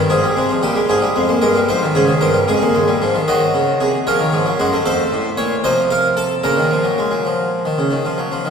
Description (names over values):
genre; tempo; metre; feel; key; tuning
classical, baroque-style 4-part fugue for harpsichord; 76 BPM (dotted quarters); 12/8; straight; Ab major, Bb minor from 3.3 s; A4 = 440 Hz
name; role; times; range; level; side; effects
harpsichord; solo; 0.0-8.5 s; Eb2 to Bb5; -14 LUFS; equal; none
room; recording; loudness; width
wet church reverb, RT60 2.7 s; minimal, uncompressed stereo recording; -14 LUFS; side -6 dB against mid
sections
0.0-3.3 A section; 3.3-8.5 B section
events
none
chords
0.1 Ab5; 3.3 Ebm; 4.9 F; 6.4 Bbm